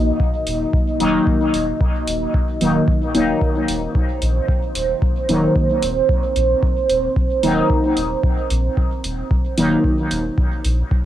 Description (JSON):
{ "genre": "dub techno", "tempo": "112 BPM", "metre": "4/4", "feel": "straight", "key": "Eb dorian", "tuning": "A4 = 443 Hz", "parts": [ { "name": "deep dark ambient pad", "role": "sustained chords", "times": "0.0-11.1 s", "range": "Bb3 to Eb5", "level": "-22 LUFS", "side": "right 3 dB", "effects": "chorus, built-in reverb, sidechain pumping" }, { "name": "soft dub sub bass", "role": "bass", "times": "0.0-10.8 s", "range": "Eb1 to Bb1", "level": "-23 LUFS", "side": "equal", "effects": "sidechain pumping" }, { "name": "electronic kick drum", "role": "drums", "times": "0.2-11.0 s", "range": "none", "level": "-19 LUFS", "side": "equal", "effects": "cassette tape" }, { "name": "electronic hi-hat", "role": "drums", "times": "0.5-10.8 s", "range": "none", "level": "-28 LUFS", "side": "right 1 dB", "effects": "cassette tape" }, { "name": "resonant sweep polysynth", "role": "stabs", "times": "1.0-9.9 s", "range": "Eb3 to Eb4", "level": "-20 LUFS", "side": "left 1 dB", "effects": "chorus, phaser, sidechain pumping, dub echo" } ], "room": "moderate small room reverb, RT60 0.5 s", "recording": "home recording on cassette", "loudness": "-16 LUFS", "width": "side -12 dB against mid", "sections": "0.0-11.1 A section", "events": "none", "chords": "0.0 Ebm" }